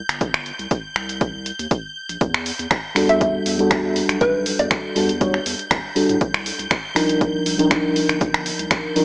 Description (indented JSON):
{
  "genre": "deep house",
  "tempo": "120 BPM",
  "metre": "4/4",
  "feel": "swing 53% on 16ths",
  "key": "unclear",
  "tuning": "A4 = 440 Hz",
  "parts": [
    { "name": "string machine, violins", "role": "texture", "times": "0.0-9.0 s", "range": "G6", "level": "-31 LUFS", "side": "equal", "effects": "ensemble chorus, sidechain pumping" },
    { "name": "round analog bass", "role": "bass", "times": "0.1-9.0 s", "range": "G1 to A2", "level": "-30 LUFS", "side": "equal", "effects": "sidechain pumping" },
    { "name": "punchy analog drum machine", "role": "drums", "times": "0.1-9.0 s", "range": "finger snaps, hi-hat", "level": "-22 LUFS", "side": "equal", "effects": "none" },
    { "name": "electronic kick drum", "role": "drums", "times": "0.2-8.8 s", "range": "none", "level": "-22 LUFS", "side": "equal", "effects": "none" },
    { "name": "mellow FM electric piano", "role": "stabs", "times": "2.9-9.0 s", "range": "F3 to C#5", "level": "-20 LUFS", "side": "equal", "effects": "chorus, sidechain pumping, tape echo" },
    { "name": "hollow square pluck", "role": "melody", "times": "3.1-5.0 s", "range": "B4 to E5", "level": "-22 LUFS", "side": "equal", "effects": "lush chorus, cassette tape, dub echo" }
  ],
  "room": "moderate echo chamber reverb, RT60 1.7 s",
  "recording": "small speaker sound",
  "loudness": "-18 LUFS",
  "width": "side -26 dB against mid",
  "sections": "0.0-9.0 A section",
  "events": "none",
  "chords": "0.0 C5; 2.2 Em11; 6.2 Cm11"
}